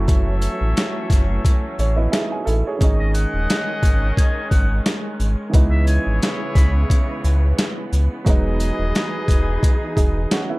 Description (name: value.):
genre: hip hop, boom-bap hip-hop.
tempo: 88 BPM.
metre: 4/4.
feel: swing 55% on 16ths.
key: C# minor.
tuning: A4 = 443 Hz.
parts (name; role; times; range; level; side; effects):
warm upright piano; accompaniment; 0.0-10.6 s; D#3 to G#5; -27 LUFS; right 3 dB; high-pass filter, low-pass filter.
rich studio string section; sustained chords; 0.0-10.6 s; C#3 to G#4; -29 LUFS; equal; high-pass filter, low-pass filter.
bright trumpet section; stabs; 0.0-10.3 s; E4 to E5; -31 LUFS; left 2 dB; high-pass filter, low-pass filter, digital delay.
sub bass with octave; bass; 0.0-10.3 s; D#1 to C#2; -19 LUFS; equal; none.
boom bap sampler-style drum kit; drums; 0.1-10.5 s; hi-hat, kick drum, shaker, snare drum; -18 LUFS; equal; none.
sleigh bells; percussion; 0.1-10.5 s; none; -39 LUFS; right 4 dB; none.
trumpet with metal mute; melody; 3.0-6.7 s; D#5 to B5; -29 LUFS; equal; high-pass filter, low-pass filter, digital delay.
room: little or no reverb.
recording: dark, warm production.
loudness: -16 LUFS.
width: side -22 dB against mid.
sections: 0.0-10.6 A section.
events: none.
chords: 0.0 F#m7; 2.8 G#sus4; 5.5 C#m7; 8.3 Emaj7.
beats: | 0.08 0.76 1.45 2.13 | 2.81 3.49 4.17 4.85 | 5.54 6.22 6.90 7.58 | 8.26 8.95 9.63 10.31.